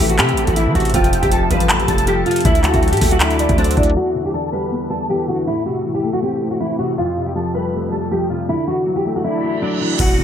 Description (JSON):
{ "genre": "hip hop, trap", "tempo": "159 BPM", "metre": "4/4", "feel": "half-time", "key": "unclear", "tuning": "A4 = 440 Hz", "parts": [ { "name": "nylon-string guitar", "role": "melody", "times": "0.0-10.2 s", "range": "D4 to B4", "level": "-20 LUFS", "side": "equal", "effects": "ensemble chorus, low-pass filter, ping-pong delay" }, { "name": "dark concert grand piano", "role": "accompaniment", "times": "0.0-10.2 s", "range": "E2 to D4", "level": "-21 LUFS", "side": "left 2 dB", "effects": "ensemble chorus, low-pass filter" }, { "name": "deep dark ambient pad", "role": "sustained chords", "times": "0.0-3.9 s", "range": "A4 to E6", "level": "-26 LUFS", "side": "left 2 dB", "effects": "chorus, built-in reverb" }, { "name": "hard-hitting 808-style bass", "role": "bass", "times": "0.0-4.0, 10.0-10.2 s", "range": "E1 to E3", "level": "-20 LUFS", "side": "equal", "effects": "none" }, { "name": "booming analog drum machine", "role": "drums", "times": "0.0-4.0, 10.0-10.2 s", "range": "crash cymbal, handclaps, hi-hat, kick drum", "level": "-17 LUFS", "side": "equal", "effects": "gated reverb" }, { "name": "warm velvety synth lead", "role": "second line", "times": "0.9-4.0 s", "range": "C5 to G5", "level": "-26 LUFS", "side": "equal", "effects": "chorus, ping-pong delay" }, { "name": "reverse cymbal and downlifter", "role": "sound effects", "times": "9.5-10.2 s", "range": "none", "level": "-25 LUFS", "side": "right 6 dB", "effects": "none" } ], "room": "moderate plate reverb, RT60 1.4 s, digital ambience", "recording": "bright 1980s-style digital production, low-pass filter", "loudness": "-15 LUFS", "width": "side -9 dB against mid", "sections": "0.0-4.0 A section; 4.0-10.0 B section", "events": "filter sweep 4.0-10.0; reverse cymbal 9.5-10.0; hi-hats muted 10.0", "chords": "0.0 Am; 0.9 Fadd9; 2.4 Dadd9; 4.0 Em7; 5.5 Am; 7.0 Fadd9; 8.5 Dadd9" }